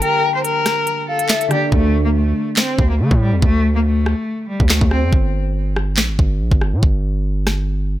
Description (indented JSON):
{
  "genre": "hip hop, drill",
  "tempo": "141 BPM",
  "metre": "4/4",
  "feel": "half-time",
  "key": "unclear",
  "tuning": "A4 = 440 Hz",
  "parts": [
    { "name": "rich cello", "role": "melody", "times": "0.0-5.1 s", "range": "G3 to C5", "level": "-20 LUFS", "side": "left 2 dB", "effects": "low-pass filter, ping-pong delay" },
    { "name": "hollow clarinet-like synth lead", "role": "second line", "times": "0.0-1.7 s", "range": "D5 to G5", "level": "-22 LUFS", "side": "left 5 dB", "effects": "chorus, ping-pong delay" },
    { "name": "concert harp", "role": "accompaniment", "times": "0.0-1.8 s", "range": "D3 to G4", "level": "-24 LUFS", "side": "right 3 dB", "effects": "low-pass filter" },
    { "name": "drill drum kit", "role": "drums", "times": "0.0-7.6 s", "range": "handclaps, hi-hat, kick drum, rim click, snare drum", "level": "-17 LUFS", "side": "equal", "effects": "none" },
    { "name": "distorted 808-style bass", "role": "bass", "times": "1.7-8.0 s", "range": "G1 to D3", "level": "-17 LUFS", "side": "equal", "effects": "distortion" }
  ],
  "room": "little or no reverb",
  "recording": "none",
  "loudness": "-15 LUFS",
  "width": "side -14 dB against mid",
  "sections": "0.0-1.7 A section; 1.7-8.0 B section",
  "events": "break 0.0-1.7; hi-hats muted 1.7-8.0",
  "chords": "0.0 Gm; 1.7 D5; 5.1 N.C."
}